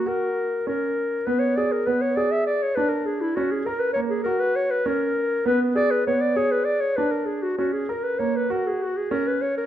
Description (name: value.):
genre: contemporary instrumental, contemporary.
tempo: 199 BPM (eighths).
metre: 7/8.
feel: straight.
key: F# mixolydian.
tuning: A4 = 440 Hz.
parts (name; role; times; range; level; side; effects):
mellow clarinet; melody; 0.0-9.6 s; E4 to E5; -23 LUFS; left 2 dB; none.
warm grand piano; arpeggios; 0.1-9.6 s; A#3 to A#4; -25 LUFS; right 3 dB; none.
room: moderate recital hall reverb, RT60 1.6 s.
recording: minimal, uncompressed stereo recording.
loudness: -21 LUFS.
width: side -11 dB against mid.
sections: 0.0-9.7 A section.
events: none.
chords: 0.0 F#; 1.3 Bm6; 3.4 F#; 5.5 Bm6; 7.6 F#.